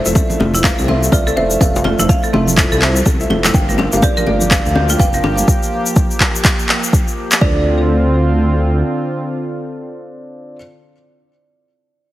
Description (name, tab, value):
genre	afro house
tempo	124 BPM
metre	4/4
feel	swing 60% on 16ths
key	D minor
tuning	A4 = 439 Hz
part	kalimba	melody	0.0-10.6 s	D5 to F5	-23 LUFS	right 2 dB	digital delay
part	warm analog pad	sustained chords	0.0-10.6 s	D3 to G4	-23 LUFS	right 1 dB	chorus, sidechain pumping
part	buzzing marimba with hard mallets	arpeggios	0.0-7.6 s	C4 to G5	-22 LUFS	right 1 dB	sidechain pumping, digital delay
part	felt-muted upright piano	stabs	0.0-10.6 s	C4 to F5	-24 LUFS	left 2 dB	sidechain pumping, digital delay
part	dark detuned saw bass	bass	0.1-8.8 s	F1 to D2	-17 LUFS	equal	sidechain pumping
part	congas	percussion	0.1-5.5 s	none	-23 LUFS	right 2 dB	none
part	tube shaker	percussion	0.1-7.4 s	none	-23 LUFS	left 3 dB	none
part	electronic kick drum	drums	0.2-7.5 s	none	-15 LUFS	equal	overdrive
part	bongos	percussion	0.2-5.4 s	none	-22 LUFS	left 3 dB	none
part	electronic handclaps	drums	0.6-7.4 s	none	-18 LUFS	equal	none
room	light reverb, small room reverb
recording	heavily compressed radio sound, multiband compression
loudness	-12 LUFS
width	side -15 dB against mid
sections	0.0-7.4 A section; 7.4-11.3 B section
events	drop 0.0-7.4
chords	0.0 Fmaj7; 3.5 Gm7; 7.4 Dm7